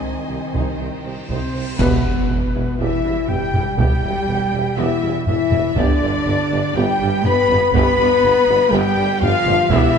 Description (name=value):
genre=cinematic, epic orchestral film score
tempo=121 BPM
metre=4/4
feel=straight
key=unclear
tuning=A4 = 440 Hz
part: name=warm symphonic violin section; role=melody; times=0.0-10.0 s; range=B4 to B5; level=-28 LUFS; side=left 3 dB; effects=none
part: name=warm symphonic violin section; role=second line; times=0.0-10.0 s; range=B4 to B5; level=-27 LUFS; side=left 2 dB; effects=none
part: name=dark studio viola section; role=accompaniment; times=0.0-10.0 s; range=D3 to C5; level=-27 LUFS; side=right 1 dB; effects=none
part: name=mellow French horn section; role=sustained chords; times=0.0-10.0 s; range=B3 to B4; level=-20 LUFS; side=left 5 dB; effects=none
part: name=rich symphonic cello section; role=bass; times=0.0-10.0 s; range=B2 to B3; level=-26 LUFS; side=right 4 dB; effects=none
part: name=cymbal swell and impact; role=sound effects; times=1.1-3.8 s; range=none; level=-32 LUFS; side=equal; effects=none
part: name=clear tuba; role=bass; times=0.3-10.0 s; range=E1 to C2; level=-28 LUFS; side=right 5 dB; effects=none
part: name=rich chamber double bass section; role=bass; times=0.3-10.0 s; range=E1 to C2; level=-24 LUFS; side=right 5 dB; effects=none
part: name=taiko ensemble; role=drums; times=0.5-10.0 s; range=none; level=-23 LUFS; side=equal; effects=none
part: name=bright concert flute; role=second line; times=1.3-10.0 s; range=B4 to B5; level=-26 LUFS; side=left 1 dB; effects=none
part: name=clash cymbals and concert bass drum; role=percussion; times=1.8-2.8 s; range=none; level=-26 LUFS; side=right 1 dB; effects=none
room=moderate concert hall reverb, RT60 2.1 s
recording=nothing above 10.7 kHz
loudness=-15 LUFS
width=side -6 dB against mid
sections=0.0-1.8 A section; 1.8-10.0 B section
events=cymbal swell 1.1-1.8; band accent 1.8-2.3; impact 1.8-3.8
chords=0.0 Cm; 1.8 Em; 5.8 G